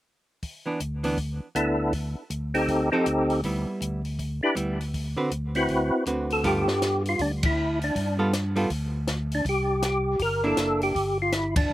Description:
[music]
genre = soul jazz organ trio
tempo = 160 BPM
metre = 4/4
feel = swing 63% on 8ths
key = G mixolydian from 6.4 s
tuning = A4 = 439 Hz
[part]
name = compact cocktail drum kit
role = drums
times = 0.4-11.6 s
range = hi-hat, kick drum, ride cymbal, snare drum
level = -31 LUFS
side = left 1 dB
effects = none
[part]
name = archtop guitar, miked and amplified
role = accompaniment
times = 0.7-10.9 s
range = D3 to B4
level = -28 LUFS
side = right 2 dB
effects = slapback echo
[part]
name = tonewheel organ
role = bass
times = 0.8-11.7 s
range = F#1 to G2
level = -29 LUFS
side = equal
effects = overdrive, stopped rotary speaker
[part]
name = percussive tonewheel organ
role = melody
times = 1.6-11.7 s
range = B3 to B4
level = -24 LUFS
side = equal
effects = slow rotary speaker, chorus vibrato, slapback echo
[sound]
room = little or no reverb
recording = recorded outdoors, with no room sound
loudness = -23 LUFS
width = side -14 dB against mid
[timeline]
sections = 0.4-6.4 A section; 6.4-11.7 B section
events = band accent 7.4, 11.5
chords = 0.4 Bmadd11/D; 1.9 F7 (rootless); 3.4 G6/D; 4.9 D13; 6.4 G9; 9.4 C9; 10.9 G7(no3)

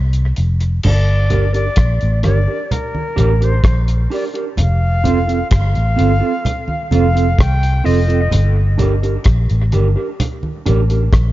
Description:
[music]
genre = dub reggae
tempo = 64 BPM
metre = 4/4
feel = straight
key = G minor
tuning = A4 = 437 Hz
[part]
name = vintage muted fingered electric bass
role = bass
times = 0.0-11.3 s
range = F1 to C2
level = -14 LUFS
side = equal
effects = none
[part]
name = cloth-damped thuddy drum kit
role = drums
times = 0.1-11.3 s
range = crash cymbal, hi-hat, kick drum, rim click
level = -18 LUFS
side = equal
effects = none
[part]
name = congas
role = percussion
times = 0.8-11.3 s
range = none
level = -23 LUFS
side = right 2 dB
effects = none
[part]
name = bright concert flute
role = melody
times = 0.9-8.3 s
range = Bb4 to G5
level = -23 LUFS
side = left 2 dB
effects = dub echo
[part]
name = mellow electric guitar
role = accompaniment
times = 1.3-11.0 s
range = C4 to Bb4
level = -21 LUFS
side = right 5 dB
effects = dub echo
[sound]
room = small room ambience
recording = dark, warm production, nothing above 7.5 kHz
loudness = -13 LUFS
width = side -16 dB against mid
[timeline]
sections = 0.8-11.3 A section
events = break 0.0-0.8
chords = 0.0 F5; 0.8 Gm; 4.6 F; 8.3 Gm

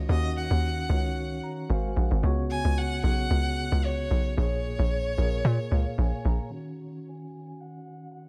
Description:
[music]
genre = amapiano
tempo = 112 BPM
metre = 4/4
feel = swing 55% on 16ths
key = Eb minor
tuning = A4 = 440 Hz
[part]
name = mellow tine electric piano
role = accompaniment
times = 0.0-8.3 s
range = Bb2 to Bb5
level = -36 LUFS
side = equal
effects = low-pass filter
[part]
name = tight log drum bass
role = bass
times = 0.0-6.4 s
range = Ab1 to Bb2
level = -28 LUFS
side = equal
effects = none
[part]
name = warm violin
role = melody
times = 0.1-8.3 s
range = Db5 to Ab5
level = -37 LUFS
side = equal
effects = low-pass filter, digital delay
[sound]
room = studio ambience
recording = none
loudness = -27 LUFS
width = mono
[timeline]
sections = 0.0-6.5 A section; 6.5-8.3 B section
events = drop 0.0-6.5; tine electric piano fill 1.2-2.2, 5.4-6.5; filter sweep 6.5-8.3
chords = 0.0 Ebm9; 1.7 Ab13; 2.2 Db7sus4; 4.4 Bbm7; 6.5 Ebm7

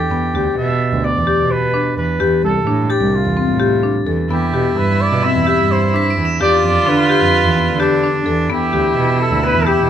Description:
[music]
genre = contemporary instrumental, chamber music in an uneven meter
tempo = 257 BPM (eighths)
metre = 9/8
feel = straight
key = E phrygian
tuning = A4 = 441 Hz
[part]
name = mellow trumpet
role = melody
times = 0.0-9.9 s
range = F4 to E5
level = -19 LUFS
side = right 2 dB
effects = none
[part]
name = marimba with hard mallets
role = arpeggios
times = 0.0-9.9 s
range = B3 to A4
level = -18 LUFS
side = left 6 dB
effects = none
[part]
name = crotales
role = texture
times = 0.0-6.9 s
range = A6 to E7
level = -29 LUFS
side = left 1 dB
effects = none
[part]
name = warm cello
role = bass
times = 0.1-9.9 s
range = C2 to D3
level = -18 LUFS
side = right 3 dB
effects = none
[part]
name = bright viola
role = second line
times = 4.3-9.9 s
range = D4 to F4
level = -19 LUFS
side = right 2 dB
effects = none
[sound]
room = light reverb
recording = none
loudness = -13 LUFS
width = side -9 dB against mid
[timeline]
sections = 0.0-9.9 A section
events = none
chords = 0.1 Em7; 2.2 Dm11; 4.3 Cmaj9/E; 6.4 G7/E; 8.5 Em7

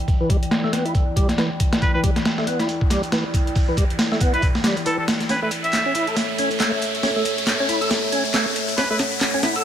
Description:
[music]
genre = breakbeat, breaks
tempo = 138 BPM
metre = 4/4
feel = swing 58% on 16ths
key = E dorian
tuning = A4 = 440 Hz
[part]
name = dark analog pad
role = sustained chords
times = 0.0-9.6 s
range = E3 to G5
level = -27 LUFS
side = equal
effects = chorus, phaser, sidechain pumping
[part]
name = riser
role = sound effects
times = 0.1-9.6 s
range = none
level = -28 LUFS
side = left 1 dB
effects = none
[part]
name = breakbeat sampler-style drum kit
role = drums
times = 0.1-9.6 s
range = hi-hat, kick drum, snare drum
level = -21 LUFS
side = equal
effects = low-pass filter on hats, studio reverb, low-pass filter on kick, low-pass filter on snare
[part]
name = punchy analog drum machine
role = drums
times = 0.1-9.6 s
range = handclaps, hi-hat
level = -29 LUFS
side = left 1 dB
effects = studio reverb
[part]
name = percussive tonewheel organ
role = riff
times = 0.2-9.6 s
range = E3 to A4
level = -25 LUFS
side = equal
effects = overdrive, chorus vibrato, slow rotary speaker, low-pass filter, digital delay
[part]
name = trumpet with straight mute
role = melody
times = 1.8-6.1, 8.8-9.0 s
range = A4 to E5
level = -26 LUFS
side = equal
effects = old record sound, digital delay
[sound]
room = light reverb, digital ambience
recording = none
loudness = -18 LUFS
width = side -10 dB against mid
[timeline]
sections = 0.0-9.6 A section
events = build-up 0.0-9.6; filter sweep on drum 0.0-9.6; filter sweep on tonewheel organ 0.0-9.6; riser 0.1-9.6; drum fill 5.3-9.6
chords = 0.0 Em7; 5.3 A

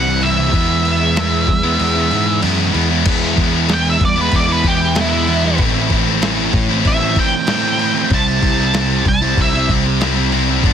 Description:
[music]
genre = quiet-loud alternative rock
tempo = 95 BPM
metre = 4/4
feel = straight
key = E major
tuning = A4 = 440 Hz
[part]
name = octave-fuzz lead guitar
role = melody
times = 0.0-9.7 s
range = E4 to A5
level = -19 LUFS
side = right 2 dB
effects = distortion, tape echo
[part]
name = string machine, cellos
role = sustained chords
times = 0.0-3.0 s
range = G4 to C6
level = -30 LUFS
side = left 2 dB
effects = ensemble chorus
[part]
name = distorted electric guitar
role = riff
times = 0.0-10.7 s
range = G2 to E4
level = -19 LUFS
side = left 20 dB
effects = overdrive
[part]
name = thick fuzz guitar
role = riff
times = 0.0-10.7 s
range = G2 to E4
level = -20 LUFS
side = right 13 dB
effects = distortion
[part]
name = overdriven fingered electric bass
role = bass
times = 0.0-10.7 s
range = G1 to G#2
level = -19 LUFS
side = left 1 dB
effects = none
[part]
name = dusty soul sampler-style drum kit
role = drums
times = 0.2-10.7 s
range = crash cymbal, kick drum, snare drum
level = -20 LUFS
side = equal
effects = none
[sound]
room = little or no reverb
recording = dense, heavily limited modern master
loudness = -13 LUFS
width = side -8 dB against mid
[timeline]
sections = 0.0-3.1 A section; 3.1-10.7 B section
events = kick and snare drop out 1.8-3.1; lead electric guitar solo 3.1-10.7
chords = 0.0 C; 0.5 E; 5.6 Am; 8.1 C

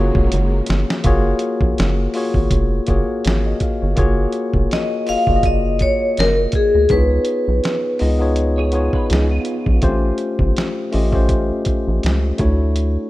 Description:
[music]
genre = R&B, neo-soul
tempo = 82 BPM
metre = 4/4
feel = swing 55% on 16ths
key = F# major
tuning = A4 = 440 Hz
[part]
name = tine electric piano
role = accompaniment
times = 0.0-13.1 s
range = A3 to E#5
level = -21 LUFS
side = left 2 dB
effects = none
[part]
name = warm symphonic string section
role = sustained chords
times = 0.0-1.0 s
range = C#3 to A#3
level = -31 LUFS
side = right 1 dB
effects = none
[part]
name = rubbery square bass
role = bass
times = 0.0-13.0 s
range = E#1 to D2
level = -18 LUFS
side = equal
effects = none
[part]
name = dusty soul sampler-style drum kit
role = drums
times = 0.1-12.9 s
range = hi-hat, kick drum, snare drum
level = -21 LUFS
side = equal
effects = none
[part]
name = vibraphone with hard mallets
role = melody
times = 4.7-8.0 s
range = G#4 to E#5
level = -18 LUFS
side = left 1 dB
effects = tape echo
[part]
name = clean electric guitar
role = second line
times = 8.6-9.8 s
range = B3 to C#5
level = -28 LUFS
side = right 5 dB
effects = ensemble chorus
[sound]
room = little or no reverb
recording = rough home demo mix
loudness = -15 LUFS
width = side -16 dB against mid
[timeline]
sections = 0.0-1.0 A section; 1.0-4.0 B section; 4.0-13.1 C section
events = drum fill 0.3-1.0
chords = 0.0 F#maj9; 6.9 C#9; 9.8 A7alt; 12.4 Dmaj9

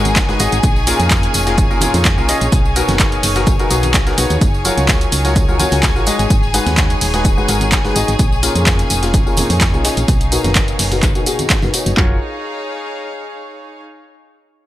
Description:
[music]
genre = piano house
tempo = 127 BPM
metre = 4/4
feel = straight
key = F# major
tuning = A4 = 440 Hz
[part]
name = clear studio violin section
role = sustained chords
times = 0.0-12.0 s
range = G#4 to G#5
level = -23 LUFS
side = left 2 dB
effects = sidechain pumping
[part]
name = bright grand piano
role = riff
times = 0.0-12.2 s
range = A#2 to D#5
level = -20 LUFS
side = left 2 dB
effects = sidechain pumping, low-pass filter
[part]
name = solid FM bass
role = bass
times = 0.0-12.2 s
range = D#1 to E#2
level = -19 LUFS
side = equal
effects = sidechain pumping
[part]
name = rich chamber string section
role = texture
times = 0.0-13.8 s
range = D#4 to F#5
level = -25 LUFS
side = right 1 dB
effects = sidechain pumping
[part]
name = punchy analog drum machine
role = drums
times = 0.1-12.0 s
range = handclaps, hi-hat, tambourine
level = -19 LUFS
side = equal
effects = none
[part]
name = tambourine and congas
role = percussion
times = 0.1-12.0 s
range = none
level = -28 LUFS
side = right 3 dB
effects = none
[part]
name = dusty soul sampler-style drum kit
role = drums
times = 0.2-11.9 s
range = hi-hat, shaker, snare drum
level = -28 LUFS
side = equal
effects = none
[part]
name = punchy analog drum machine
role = drums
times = 0.2-12.1 s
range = handclaps, kick drum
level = -16 LUFS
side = equal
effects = none
[sound]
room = light reverb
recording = none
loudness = -12 LUFS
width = side -14 dB against mid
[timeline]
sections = 0.0-12.0 A section; 12.0-13.9 B section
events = filter sweep on FM bass 0.0-12.0; filter sweep on grand piano 0.0-12.0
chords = 0.0 G#m7; 0.6 A#m7; 2.5 Bmaj7; 4.4 F#maj7; 6.1 G#m7; 8.2 A#m7; 10.1 Bmaj7; 12.0 F#maj7(no3)

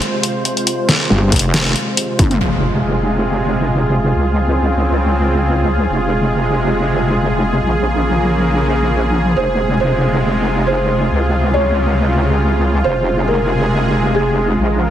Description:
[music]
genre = heavy wobble dubstep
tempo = 138 BPM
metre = 4/4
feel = swing 55% on 16ths, half-time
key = F minor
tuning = A4 = 441 Hz
[part]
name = supersaw pad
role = sustained chords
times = 0.0-14.9 s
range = C3 to C5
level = -17 LUFS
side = equal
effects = sidechain pumping, low-pass filter
[part]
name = dubstep drum kit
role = drums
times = 0.0-2.5 s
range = crash cymbal, hi-hat, snare drum, toms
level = -17 LUFS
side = left 1 dB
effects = low-pass filter on hats, low-pass filter on snare, low-pass filter on toms, low-pass filter on cymbals, low-pass filter on room
[part]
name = metallic wobble bass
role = bass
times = 1.1-1.3 s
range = G1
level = -12 LUFS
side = equal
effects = distortion, chorus, overdrive
[part]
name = wobble bass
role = bass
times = 1.3-14.9 s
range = F1 to Db2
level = -16 LUFS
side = equal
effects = chorus, overdrive
[part]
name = electronic kick drum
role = drums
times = 1.3-2.3 s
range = none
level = -15 LUFS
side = equal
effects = none
[part]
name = impact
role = sound effects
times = 2.4-4.1 s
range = none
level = -24 LUFS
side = equal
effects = none
[part]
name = felt-muted upright piano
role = melody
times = 9.4-14.9 s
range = Ab4 to Db5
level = -20 LUFS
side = right 1 dB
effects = ping-pong delay
[sound]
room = moderate lush hall reverb, RT60 1.9 s, digital ambience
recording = heavily compressed radio sound, multiband compression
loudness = -13 LUFS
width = side -11 dB against mid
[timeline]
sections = 0.0-2.4 A section; 2.4-14.9 B section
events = drop 0.0-2.4; drum fill 2.2; impact 2.4-4.1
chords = 0.0 Fmadd9; 2.4 Fm; 4.1 Dbmaj7; 5.9 Fm; 7.6 Bbm7; 9.4 Fm; 11.1 Dbmaj7; 12.8 Fm

